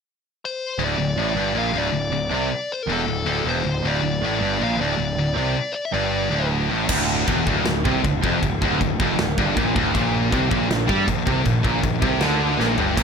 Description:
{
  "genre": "heavy metal",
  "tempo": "158 BPM",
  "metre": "4/4",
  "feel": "straight",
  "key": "D minor",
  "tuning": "A4 = 436 Hz",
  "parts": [
    { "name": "nasal lead guitar with a parked wah", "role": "melody", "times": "0.5-6.5 s", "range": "A4 to F5", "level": "-26 LUFS", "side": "left 3 dB", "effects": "overdrive" },
    { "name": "distorted electric guitar", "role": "riff", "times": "0.8-13.0 s", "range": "D2 to G3", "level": "-26 LUFS", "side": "right 12 dB", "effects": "overdrive" },
    { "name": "scooped high-gain guitar", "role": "riff", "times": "0.8-13.0 s", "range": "D2 to G3", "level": "-24 LUFS", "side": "left 10 dB", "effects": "distortion" },
    { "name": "fuzz picked electric bass", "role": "bass", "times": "0.8-13.0 s", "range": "D1 to G2", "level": "-26 LUFS", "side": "equal", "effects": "overdrive" },
    { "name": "fuzz guitar", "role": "riff", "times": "6.9-13.0 s", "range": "D2 to G3", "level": "-26 LUFS", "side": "equal", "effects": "distortion" },
    { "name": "big rock drum kit", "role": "drums", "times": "6.9-13.0 s", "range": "china cymbal, crash cymbal, kick drum, snare drum, toms", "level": "-23 LUFS", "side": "equal", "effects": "none" }
  ],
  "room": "light reverb",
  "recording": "none",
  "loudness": "-19 LUFS",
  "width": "side -6 dB against mid",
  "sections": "0.8-6.9 A section; 6.9-13.0 B section",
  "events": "drum fill 12.6-13.0",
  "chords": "0.0 N.C.; 0.8 D5; 6.9 Dm; 9.9 Bb5"
}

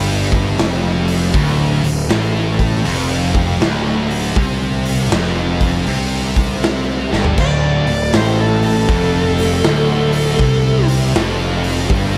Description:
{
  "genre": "stoner and doom metal",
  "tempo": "80 BPM",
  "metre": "4/4",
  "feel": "swing 65% on 8ths",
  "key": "D minor",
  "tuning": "A4 = 440 Hz",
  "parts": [
    { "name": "heavy high-gain guitar", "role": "riff", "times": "0.0-12.2 s", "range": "D2 to C3", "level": "-24 LUFS", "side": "equal", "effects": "distortion" },
    { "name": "thick fuzz guitar", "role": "riff", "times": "0.0-12.2 s", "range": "D2 to C3", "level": "-24 LUFS", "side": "equal", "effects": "none" },
    { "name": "fuzz picked electric bass", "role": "bass", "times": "0.0-12.2 s", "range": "D1 to C2", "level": "-22 LUFS", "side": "equal", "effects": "overdrive" },
    { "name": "raw garage drum kit", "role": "drums", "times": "0.3-12.1 s", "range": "crash cymbal, hi-hat, kick drum, snare drum, toms", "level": "-22 LUFS", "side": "equal", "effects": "none" },
    { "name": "thick fuzz guitar", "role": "riff", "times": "1.3-12.2 s", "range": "D2 to C3", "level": "-24 LUFS", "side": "equal", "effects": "none" },
    { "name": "fuzz lead guitar", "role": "melody", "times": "7.4-10.9 s", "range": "A4 to D5", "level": "-21 LUFS", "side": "equal", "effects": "distortion, slapback echo" }
  ],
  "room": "light reverb",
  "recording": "none",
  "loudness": "-16 LUFS",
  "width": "mono",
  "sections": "0.0-7.4 A section; 7.4-12.2 B section",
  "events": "drum fill 7.0-7.4; lead electric guitar solo 7.4-12.2",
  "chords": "0.0 Dm"
}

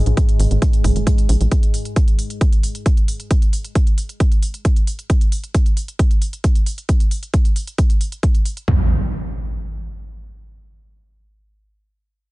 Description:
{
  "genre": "driving peak-time techno",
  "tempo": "134 BPM",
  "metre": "4/4",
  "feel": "straight",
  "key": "unclear",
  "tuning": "A4 = 440 Hz",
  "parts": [
    { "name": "tight sequencer bass", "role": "bass", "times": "0.0-1.5 s", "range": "G#1 to A#1", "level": "-15 LUFS", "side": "equal", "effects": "sidechain pumping" },
    { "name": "deep dark ambient pad", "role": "drone", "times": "0.0-1.6 s", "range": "G#2 to G#3", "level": "-26 LUFS", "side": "equal", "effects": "chorus, built-in reverb, sidechain pumping" },
    { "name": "electronic hi-hat", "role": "drums", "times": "0.1-8.7 s", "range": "none", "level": "-32 LUFS", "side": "right 1 dB", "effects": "sidechain pumping on hats, sidechain pumping on cymbals" },
    { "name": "techno drum kit", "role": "drums", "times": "0.2-8.8 s", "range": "kick drum, toms", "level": "-15 LUFS", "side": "equal", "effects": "none" },
    { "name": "impact", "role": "sound effects", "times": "8.7-11.7 s", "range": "none", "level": "-22 LUFS", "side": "equal", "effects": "none" }
  ],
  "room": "little or no reverb",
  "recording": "nothing above 10.4 kHz",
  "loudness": "-15 LUFS",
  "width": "side -21 dB against mid",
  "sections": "0.0-8.7 A section; 8.7-12.3 B section",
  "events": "none",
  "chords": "0.0 G#5; 8.7 N.C."
}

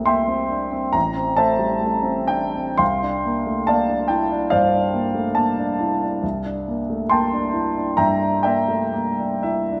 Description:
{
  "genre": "classical, impressionist solo piano",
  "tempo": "56-73 BPM",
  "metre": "4/4",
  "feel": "rubato",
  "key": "unclear",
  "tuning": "A4 = 441 Hz",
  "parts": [
    { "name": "warm grand piano", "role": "solo", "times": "0.0-9.8 s", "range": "A1 to C6", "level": "-21 LUFS", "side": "equal", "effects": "none" }
  ],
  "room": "moderate concert hall reverb, RT60 2.0 s",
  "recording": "none",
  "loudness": "-21 LUFS",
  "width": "mono",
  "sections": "0.0-9.8 A section",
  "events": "none",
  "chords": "0.0 C9; 1.0 Am7; 2.8 C11; 6.2 C13"
}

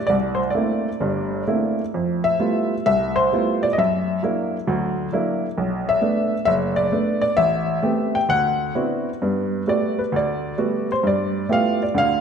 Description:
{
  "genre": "solo jazz",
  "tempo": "131 BPM",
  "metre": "4/4",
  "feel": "swing 68% on 8ths, rubato",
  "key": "G major",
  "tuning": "A4 = 440 Hz",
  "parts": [
    { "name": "clear upright piano", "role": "solo", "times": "0.0-12.2 s", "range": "F#1 to G5", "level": "-19 LUFS", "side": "equal", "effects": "none" }
  ],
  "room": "moderate concert hall reverb, RT60 1.9 s",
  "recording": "recorded in a church or concert hall",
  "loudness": "-19 LUFS",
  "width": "side -7 dB against mid",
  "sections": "0.0-9.2 A section; 9.2-12.2 B section",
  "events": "upright piano solo 9.2-12.2",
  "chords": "0.1 C13; 1.9 Fmaj9#11; 3.8 F#aug7; 5.6 Bm7; 7.4 Am9; 8.3 D13; 9.2 Gmaj9; 11.0 G13"
}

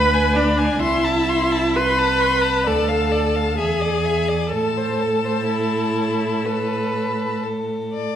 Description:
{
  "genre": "classical, slow romantic movement for string quartet",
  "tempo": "60-68 BPM",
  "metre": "4/4",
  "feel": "rubato",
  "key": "A minor",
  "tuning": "A4 = 444 Hz",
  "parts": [
    { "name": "rich violin", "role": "melody", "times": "0.0-8.2 s", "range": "D5 to B5", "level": "-26 LUFS", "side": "left 9 dB", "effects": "none" },
    { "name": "rich violin", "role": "second line", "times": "0.0-8.2 s", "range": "E4 to C6", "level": "-25 LUFS", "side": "left 2 dB", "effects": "none" },
    { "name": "rich viola", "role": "accompaniment", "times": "0.0-7.4 s", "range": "D4 to B4", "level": "-21 LUFS", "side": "right 1 dB", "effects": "none" },
    { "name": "rich cello", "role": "bass", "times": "0.0-8.2 s", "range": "C2 to A2", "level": "-24 LUFS", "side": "right 2 dB", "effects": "none" }
  ],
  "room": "wet recital hall reverb, RT60 1.4 s",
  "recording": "recorded in a church or concert hall",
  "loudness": "-18 LUFS",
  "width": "side -9 dB against mid",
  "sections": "0.0-8.2 A section",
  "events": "none",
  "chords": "0.0 G#dim/D; 0.8 Am/C; 2.7 Dm; 3.6 E7; 4.5 A5"
}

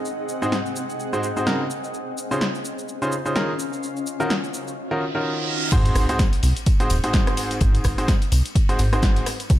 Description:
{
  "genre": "piano house",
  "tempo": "127 BPM",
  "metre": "4/4",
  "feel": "swing 58% on 16ths",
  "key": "Ab mixolydian",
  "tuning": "A4 = 440 Hz",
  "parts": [
    { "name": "granular cloud pad", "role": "texture", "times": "0.0-4.8 s", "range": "C4 to Gb5", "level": "-30 LUFS", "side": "left 1 dB", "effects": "built-in reverb, sidechain pumping" },
    { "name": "punchy analog drum machine", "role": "drums", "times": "0.1-9.6 s", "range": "crash cymbal, hi-hat, rim click, shaker, snare drum", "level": "-28 LUFS", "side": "equal", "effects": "none" },
    { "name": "bright baby grand piano", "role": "riff", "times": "0.4-9.3 s", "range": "Ab2 to C5", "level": "-25 LUFS", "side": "equal", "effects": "sidechain pumping, tape echo" },
    { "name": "reverse cymbal and sub drop", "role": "sound effects", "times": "5.0-7.6 s", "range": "none", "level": "-29 LUFS", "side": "right 2 dB", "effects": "none" },
    { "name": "plucky analog bass", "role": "bass", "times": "5.7-9.6 s", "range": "Eb1 to Db2", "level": "-20 LUFS", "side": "equal", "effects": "sidechain pumping" },
    { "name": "damped 70s drum kit", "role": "drums", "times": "5.7-9.6 s", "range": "ride cymbal, snare drum", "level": "-39 LUFS", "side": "left 5 dB", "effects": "none" },
    { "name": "electronic kick drum", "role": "drums", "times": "5.7-9.6 s", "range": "none", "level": "-19 LUFS", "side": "equal", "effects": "none" },
    { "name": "tambourine", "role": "percussion", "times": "5.7-9.6 s", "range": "none", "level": "-39 LUFS", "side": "left 5 dB", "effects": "none" }
  ],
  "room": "light reverb, small room reverb",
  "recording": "dark, warm production",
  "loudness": "-20 LUFS",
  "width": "side -13 dB against mid",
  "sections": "0.0-5.7 A section; 5.7-9.6 B section",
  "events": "reverse cymbal 5.0-5.7; drop 5.7-9.6; impact 5.7-7.6",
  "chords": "0.0 Ab7; 1.7 Dbmaj9; 3.6 Ebm9; 5.7 Ab7"
}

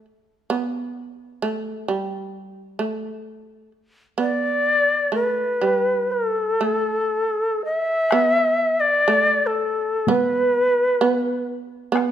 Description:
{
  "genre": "japanese traditional, Japanese chamber music",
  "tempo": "59-67 BPM",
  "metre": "4/4",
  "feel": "rubato",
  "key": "A suspended pentatonic",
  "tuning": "A4 = 437 Hz",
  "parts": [
    { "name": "shamisen", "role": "second line", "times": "0.0-12.1 s", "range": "G3 to B3", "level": "-25 LUFS", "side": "right 4 dB", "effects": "none" },
    { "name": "reedy shakuhachi", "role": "melody", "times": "4.2-11.5 s", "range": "A4 to E5", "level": "-19 LUFS", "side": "left 1 dB", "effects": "none" },
    { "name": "taiko ensemble", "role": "percussion", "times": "8.1-12.1 s", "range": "none", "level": "-27 LUFS", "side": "left 1 dB", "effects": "none" }
  ],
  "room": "moderate recital hall reverb, RT60 1.6 s",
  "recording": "none",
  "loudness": "-19 LUFS",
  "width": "side -10 dB against mid",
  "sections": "0.0-8.1 A section; 8.1-12.1 B section",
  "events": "none",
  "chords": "none"
}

